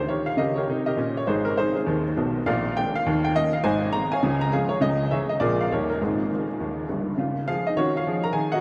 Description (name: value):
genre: jazz, stride piano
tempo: 203 BPM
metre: 4/4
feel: swing 63% on 8ths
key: Ab major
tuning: A4 = 440 Hz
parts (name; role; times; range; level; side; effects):
- clear upright piano; solo; 0.0-8.6 s; G1 to Bb5; -24 LUFS; equal; none
room: wet huge ambient reverb, RT60 7.4 s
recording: in a vast, echoing space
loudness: -24 LUFS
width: mono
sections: 0.0-7.2 A section; 7.2-8.6 B section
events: none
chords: 0.1 Eb7; 1.3 Ab; 2.5 Bb7; 3.0 Eb5; 3.6 Ab; 4.2 Db; 4.8 Dbm; 5.4 Bb7; 5.7 Eb7; 6.0 Ab; 7.2 Db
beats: | 0.09 0.39 0.68 0.98 | 1.28 1.57 1.87 2.16 | 2.46 2.75 3.05 3.34 | 3.64 3.93 4.23 4.52 | 4.82 5.12 5.41 5.71 | 6.00 6.29 6.59 6.88 | 7.18 7.47 7.77 8.06 | 8.36